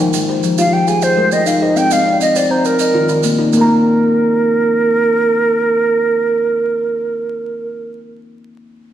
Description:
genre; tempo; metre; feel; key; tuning
southern african traditional, mbira-style interlocking cycle; 136 BPM (dotted quarters); 12/8; straight; unclear; A4 = 438 Hz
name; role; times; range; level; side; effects
kalimba; arpeggios; 0.0-8.1 s; Eb3 to Bb5; -17 LUFS; left 3 dB; none
kalimba; arpeggios; 0.0-8.1 s; Eb3 to Bb5; -20 LUFS; right 2 dB; none
maracas; percussion; 0.1-3.7 s; none; -24 LUFS; right 6 dB; none
mellow hollow silver concert flute; melody; 0.6-7.8 s; Bb4 to Ab5; -15 LUFS; right 2 dB; none
room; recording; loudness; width
wet recital hall reverb, RT60 1.5 s; heard from further back in the room, vinyl crackle; -12 LUFS; side -11 dB against mid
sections
0.0-3.5 A section; 3.5-7.1 B section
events
none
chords
0.0 Fm; 0.9 Ab; 1.8 Cm; 2.6 Eb; 3.5 N.C.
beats
0.44 0.88 1.32 | 1.76 2.20 2.65 3.09 | 3.53 3.97 4.41 4.85 | 5.29 5.73 6.17 6.62

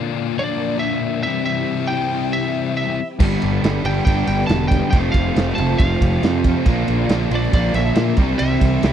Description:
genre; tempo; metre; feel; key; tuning
classic rock; 139 BPM; 4/4; straight; unclear; A4 = 439 Hz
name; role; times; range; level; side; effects
string machine, full ensemble; sustained chords; 0.0-8.9 s; A3 to E5; -28 LUFS; right 1 dB; phaser, ensemble chorus
sludgy distorted guitar; riff; 0.0-8.9 s; F2 to G4; -23 LUFS; left 10 dB; overdrive
lightly driven lead guitar; melody; 0.4-8.9 s; D5 to A5; -24 LUFS; right 1 dB; slapback echo
overdriven electric guitar; riff; 3.2-8.9 s; F2 to C4; -25 LUFS; right 3 dB; none
raw garage guitar; riff; 3.2-8.9 s; F2 to E4; -26 LUFS; right 13 dB; overdrive
fuzz picked electric bass; bass; 3.2-8.9 s; E1 to Bb2; -21 LUFS; right 1 dB; overdrive
raw garage drum kit; drums; 3.2-8.9 s; crash cymbal, kick drum, ride cymbal, snare drum; -20 LUFS; right 1 dB; none
room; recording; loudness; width
little or no reverb; dry, close 1970s-style studio recording; -16 LUFS; side -9 dB against mid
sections
0.0-8.9 A section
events
none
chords
0.0 Bb; 1.3 C; 3.2 G; 4.9 F; 6.7 Bb; 8.2 C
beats
0.18 0.61 1.04 | 1.48 1.91 2.34 2.77 | 3.21 3.64 4.07 4.51 | 4.94 5.37 5.81 6.24 | 6.67 7.11 7.54 7.97 | 8.41 8.84

